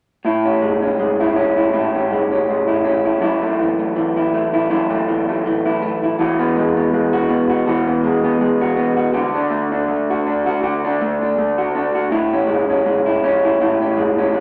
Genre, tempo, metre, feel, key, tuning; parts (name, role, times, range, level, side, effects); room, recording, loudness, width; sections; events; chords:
indie pop; 81 BPM; 4/4; swing 55% on 16ths; A major; A4 = 440 Hz
electric guitar through a small old amp; solo; 0.2-14.4 s; F#2 to F#4; -18 LUFS; equal; warbly pitch drift
wet large studio reverb, RT60 1.2 s; -18 LUFS; mono
0.3-14.4 A section
0.3 Amaj7; 3.2 F#m7; 6.2 Eadd9; 9.2 D; 12.1 Amaj7